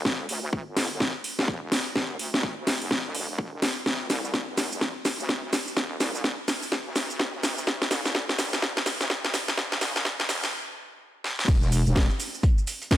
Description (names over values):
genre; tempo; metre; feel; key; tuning
bass house; 126 BPM; 4/4; swing 61% on 16ths; unclear; A4 = 439 Hz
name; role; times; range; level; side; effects
wobble bass; bass; 0.0-12.1 s; E1 to D2; -32 LUFS; equal; chorus, tube saturation, sidechain pumping, high-pass filter
electronic kick drum; drums; 0.1-13.0 s; none; -25 LUFS; equal; high-pass filter on kick, high-pass filter on room
house drum kit; drums; 0.1-13.0 s; crash cymbal, hi-hat, shaker, snare drum; -26 LUFS; equal; none
vintage drum kit; drums; 11.5-13.0 s; hi-hat, snare drum; -41 LUFS; equal; none
room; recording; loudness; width
light reverb; high-pass filter; -24 LUFS; side -13 dB against mid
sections
0.0-11.5 A section; 11.5-13.0 B section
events
build-up 0.0-11.5; drum fill 0.0-10.5, 11.2; filter sweep 0.0-11.5; stop 10.5-11.5; drop 11.5-13.0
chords
none